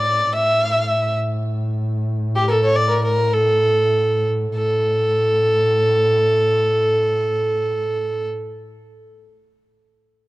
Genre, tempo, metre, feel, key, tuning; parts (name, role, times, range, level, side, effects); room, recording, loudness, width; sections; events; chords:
Arabic maqam ensemble; free time; A4 = 439 Hz
rich violin; melody; 0.0-8.3 s; G4 to E5; -17 LUFS; equal
warm double bass; drone; 0.0-8.3 s; A2; -23 LUFS; equal; stereo widening
light reverb, small room ambience; dry, close 1970s-style studio recording; -16 LUFS; side -19 dB against mid
0.0-4.5 A section; 4.5-9.4 B section
slowing down 0.3-4.5